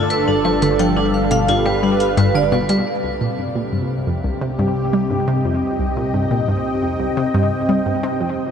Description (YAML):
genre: ambient, sequencer-driven space music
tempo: 87 BPM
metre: 4/4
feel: straight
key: C minor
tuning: A4 = 441 Hz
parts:
  - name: lush unison pad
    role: sustained chords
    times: 0.0-8.5 s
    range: C3 to A5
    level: -20 LUFS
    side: equal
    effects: chorus, phaser, shimmer reverb
  - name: vibraphone with hard mallets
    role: arpeggios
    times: 0.0-2.8 s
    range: D4 to G5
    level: -23 LUFS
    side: right 2 dB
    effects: auto-pan, tape echo, shimmer reverb
  - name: analog pluck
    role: riff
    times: 0.0-8.4 s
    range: C2 to G3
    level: -20 LUFS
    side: left 1 dB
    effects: chorus, tape echo, shimmer reverb
  - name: fat analog bass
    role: bass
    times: 0.0-8.5 s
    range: G1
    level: -31 LUFS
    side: equal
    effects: none
  - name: electronic hi-hat and woodblock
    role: percussion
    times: 0.1-2.8 s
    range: none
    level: -33 LUFS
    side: equal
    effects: tape echo
room: wet huge ambient reverb, RT60 8.4 s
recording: none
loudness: -16 LUFS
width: side -7 dB against mid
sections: 0.0-2.9 A section; 2.9-8.5 B section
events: none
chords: 0.1 G7; 2.9 Cm